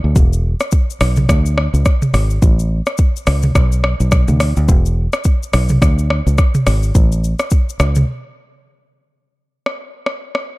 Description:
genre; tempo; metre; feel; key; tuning
afrobeats; 106 BPM; 4/4; swing 58% on 16ths; A major; A4 = 444 Hz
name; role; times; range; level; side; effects
fingered electric bass; bass; 0.0-8.0 s; E1 to D2; -14 LUFS; equal; none
afro-pop drum kit; drums; 0.2-10.5 s; hi-hat, kick drum, rim click, shaker, toms; -14 LUFS; equal; none
room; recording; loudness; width
digital ambience; dark, warm production; -13 LUFS; side -21 dB against mid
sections
0.0-9.2 A section; 9.2-10.6 B section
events
break 0.0, 8.1-9.2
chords
none

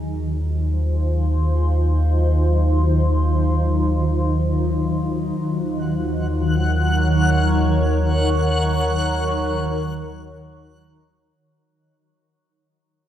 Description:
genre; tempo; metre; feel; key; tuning
ambient; free time; none; none; unclear; A4 = 440 Hz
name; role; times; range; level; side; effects
shimmering ambient pad; sustained chords; 0.0-11.4 s; Eb3 to Db5; -22 LUFS; equal; chorus, built-in reverb, phaser
warm sub bass; bass; 0.0-11.3 s; Eb2; -20 LUFS; equal; none
backwards swelling texture; texture; 5.4-11.4 s; Gb5 to Gb6; -26 LUFS; left 2 dB; built-in reverb
room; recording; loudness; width
wet cathedral reverb, RT60 5.4 s; in a vast, echoing space; -17 LUFS; side -11 dB against mid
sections
0.0-11.4 A section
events
fade-in on ambient pad 0.0-11.4; fade-out 7.4-11.4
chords
0.0 Ebm69; 5.4 Gb/Eb

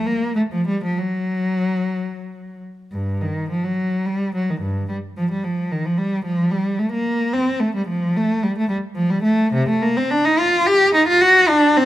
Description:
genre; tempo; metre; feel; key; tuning
classical, baroque-style suite movement for unaccompanied cello; 56-76 BPM (dotted quarters); 6/8; rubato; G minor; A4 = 441 Hz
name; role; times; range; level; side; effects
rich cello; solo; 0.0-11.9 s; G2 to G4; -17 LUFS; equal; none
room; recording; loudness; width
moderate recital hall reverb, RT60 1.8 s; close, detailed microphones; -17 LUFS; side -14 dB against mid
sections
0.0-2.9 A section; 2.9-11.9 B section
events
none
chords
none

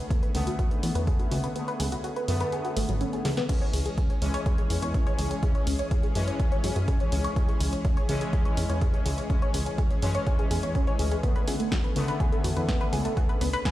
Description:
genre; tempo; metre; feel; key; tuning
melodic techno; 124 BPM; 4/4; straight; C# phrygian; A4 = 444 Hz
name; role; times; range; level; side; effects
tight sequenced synth; arpeggios; 0.0-13.7 s; F#3 to C#5; -33 LUFS; equal; chorus, phaser, vintage 12-bit sampler grit, sidechain pumping, dub echo
analog synth brass; stabs; 0.0-13.7 s; D3 to C#4; -32 LUFS; left 2 dB; chorus, sidechain pumping, dub echo
plucky analog bass; bass; 0.0-13.6 s; G#1 to F#2; -28 LUFS; equal; sidechain pumping
bowed-like drone; drone; 0.0-13.7 s; C#4 to G#4; -41 LUFS; left 2 dB; built-in reverb, sidechain pumping
electronic kick drum; drums; 0.1-13.7 s; none; -26 LUFS; equal; studio ambience
punchy analog drum machine; drums; 0.1-13.7 s; crash cymbal, hi-hat, snare drum; -36 LUFS; equal; overdrive, studio ambience
room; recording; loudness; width
light reverb; played on a big sound system in a bare room, stone room reverb; -24 LUFS; side -15 dB against mid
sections
0.0-13.7 A section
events
filter sweep on synth arpeggio sound 0.0-13.7; kick drops out 1.6-3.5; drum fill 3.2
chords
0.0 Bm7/C#; 3.5 C#m; 11.2 Bm7/C#

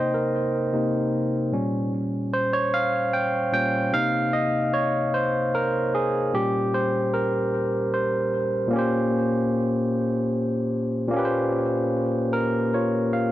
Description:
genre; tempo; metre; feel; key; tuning
R&B; 50 BPM (dotted quarters); 6/8; straight; Bb dorian; A4 = 440 Hz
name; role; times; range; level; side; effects
barky tine electric piano; solo; 0.0-13.3 s; Bb2 to G5; -21 LUFS; equal; overdrive, tape echo
room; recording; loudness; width
light reverb; dry, close 1970s-style studio recording; -21 LUFS; side -14 dB against mid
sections
0.0-8.7 A section; 8.7-13.3 B section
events
tine electric piano solo 0.0-8.7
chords
0.0 Cm7; 1.5 Bbm6; 3.9 Cm7; 6.3 Bbm6; 8.7 Bbm69

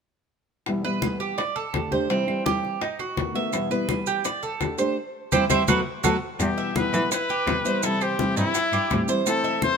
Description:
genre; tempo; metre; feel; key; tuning
latin, Cuban son and guajira; 168 BPM; 4/4; straight; E minor; A4 = 442 Hz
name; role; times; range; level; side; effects
nylon-string guitar; accompaniment; 0.7-9.8 s; E2 to G4; -27 LUFS; left 2 dB; none
bongos; percussion; 0.7-9.8 s; none; -32 LUFS; left 9 dB; none
claves; percussion; 0.7-9.8 s; none; -32 LUFS; right 10 dB; none
congas; percussion; 0.7-9.8 s; none; -31 LUFS; left 2 dB; none
Cuban tres; arpeggios; 0.8-9.8 s; C4 to E5; -26 LUFS; right 5 dB; none
maracas; percussion; 3.5-9.8 s; none; -32 LUFS; right 8 dB; none
clear trumpet; melody; 6.4-9.8 s; E4 to C5; -25 LUFS; left 4 dB; none
clear cello; bass; 6.4-9.0 s; E2 to E3; -27 LUFS; equal; none
room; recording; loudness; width
light reverb; minimal, uncompressed stereo recording; -22 LUFS; side -6 dB against mid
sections
0.7-6.4 A section; 6.4-9.8 B section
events
band accent 5.0-6.4; drum fill 5.7-6.4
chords
0.7 Em; 1.4 Dsus4; 2.1 C; 2.8 B7; 3.5 Em; 4.2 Dsus4; 5.0 C; 5.7 B5; 6.4 Em; 7.8 C; 9.3 Am

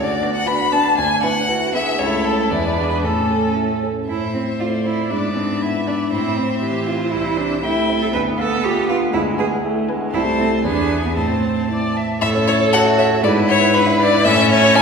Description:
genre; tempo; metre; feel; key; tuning
quick classical-period movement for piano quintet; 118 BPM; 2/4; straight; A major, A minor from 4.1 s; A4 = 440 Hz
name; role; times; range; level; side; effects
rich violin; melody; 0.0-14.8 s; A4 to B5; -20 LUFS; left 3 dB; none
rich cello; second line; 0.0-14.8 s; A3 to B4; -23 LUFS; right 4 dB; none
warm grand piano; accompaniment; 0.0-14.8 s; C2 to B5; -20 LUFS; equal; none
rich violin; second line; 0.2-14.8 s; C#4 to E5; -26 LUFS; left 3 dB; none
rich viola; accompaniment; 0.2-14.8 s; E3 to A4; -25 LUFS; right 2 dB; none
room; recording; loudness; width
wet recital hall reverb, RT60 1.4 s; recorded in a church or concert hall; -16 LUFS; side -5 dB against mid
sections
0.0-4.1 A section; 4.1-12.2 B section; 12.2-14.8 B section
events
none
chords
0.0 Bm/D; 1.0 E5/D; 2.0 A/C#; 2.5 E7; 3.0 A; 4.1 Am; 5.1 E7/G#; 6.1 Am; 7.1 Am/C; 8.1 Bdim/D; 9.1 E7/D; 10.1 Am/C; 10.6 E7; 11.2 Am; 12.2 A; 13.2 E7/G#; 14.3 A

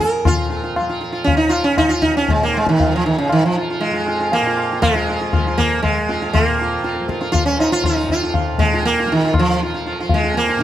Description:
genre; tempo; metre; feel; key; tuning
indian classical, Hindustani; 119 BPM; 3/4; straight; F raga malkauns; A4 = 440 Hz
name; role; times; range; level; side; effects
sitar; melody; 0.0-10.6 s; Db3 to Bb4; -17 LUFS; right 1 dB; tape echo
tanpura; drone; 0.0-10.6 s; F2 to F3; -27 LUFS; right 2 dB; none
tabla; percussion; 0.3-10.6 s; none; -20 LUFS; left 3 dB; none
room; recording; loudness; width
light reverb; close, detailed microphones; -15 LUFS; side -12 dB against mid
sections
0.3-10.6 A section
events
none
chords
none

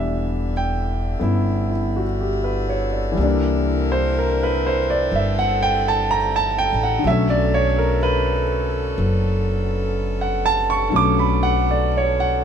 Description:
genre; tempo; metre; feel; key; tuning
jazz ballad; 62 BPM; 4/4; swing 68% on 8ths; B minor; A4 = 440 Hz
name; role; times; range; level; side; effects
clear concert grand piano; accompaniment; 0.0-12.4 s; D3 to D6; -20 LUFS; right 1 dB; none
clear saxophone section; sustained chords; 0.0-12.4 s; D3 to Bb4; -28 LUFS; left 1 dB; none
upright bass; bass; 0.0-12.4 s; E1 to C2; -22 LUFS; equal; none
room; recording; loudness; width
light reverb; none; -18 LUFS; side -8 dB against mid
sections
0.0-12.4 A section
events
none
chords
0.0 Em7; 3.2 C9; 7.0 Bm9

